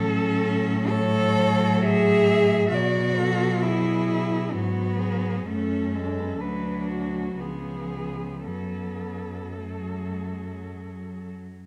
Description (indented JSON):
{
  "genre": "classical, lyrical piece for cello ensemble",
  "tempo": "53-68 BPM",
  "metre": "3/4",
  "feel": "rubato",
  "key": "F# minor",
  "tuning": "A4 = 437 Hz",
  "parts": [
    { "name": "warm cello", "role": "melody", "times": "0.0-11.2 s", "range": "F#4 to E5", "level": "-34 LUFS", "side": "equal", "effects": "none" },
    { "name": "warm cello", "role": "second line", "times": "0.0-10.7 s", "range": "A3 to A4", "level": "-29 LUFS", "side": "equal", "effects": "none" },
    { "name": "warm cello", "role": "accompaniment", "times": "0.0-11.5 s", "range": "E#3 to A3", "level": "-31 LUFS", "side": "equal", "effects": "none" },
    { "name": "warm cello", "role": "bass", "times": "0.0-11.6 s", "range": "C#2 to B2", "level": "-31 LUFS", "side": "equal", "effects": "none" }
  ],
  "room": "wet recital hall reverb, RT60 1.4 s",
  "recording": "none",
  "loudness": "-25 LUFS",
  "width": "mono",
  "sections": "0.0-11.7 A section",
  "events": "none",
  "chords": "0.0 F#m/A; 2.7 B5; 5.5 F#m; 6.4 Bm/D; 7.4 C#7; 8.5 F#m"
}